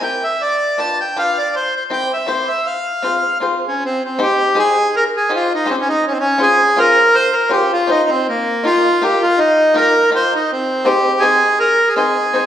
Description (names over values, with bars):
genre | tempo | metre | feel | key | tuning
musette | 161 BPM | 3/4 | swing 53% on 8ths | Ab major from 3.8 s | A4 = 440 Hz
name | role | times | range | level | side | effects
accordion | melody | 0.0-12.5 s | Bb3 to A5 | -14 LUFS | equal | none
bluegrass banjo | accompaniment | 0.0-12.5 s | C4 to C5 | -20 LUFS | left 1 dB | none
room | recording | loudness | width
wet recital hall reverb, RT60 1.6 s | recorded in a church or concert hall | -13 LUFS | side -10 dB against mid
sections
0.0-3.8 A section; 3.8-12.5 B section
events
none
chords
0.4 G7; 1.5 C; 2.7 Fm; 3.8 Abmaj7; 6.0 Dbmaj7; 8.3 Ebadd9; 10.5 Ab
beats
0.03 | 0.41 0.79 1.17 | 1.54 1.91 2.29 | 2.66 3.04 3.42 | 3.80 4.18 4.55 | 4.93 5.30 5.67 | 6.03 6.40 6.77 | 7.14 7.51 7.89 | 8.27 8.64 9.02 | 9.38 9.75 10.12 | 10.49 10.86 11.22 | 11.59 11.96 12.35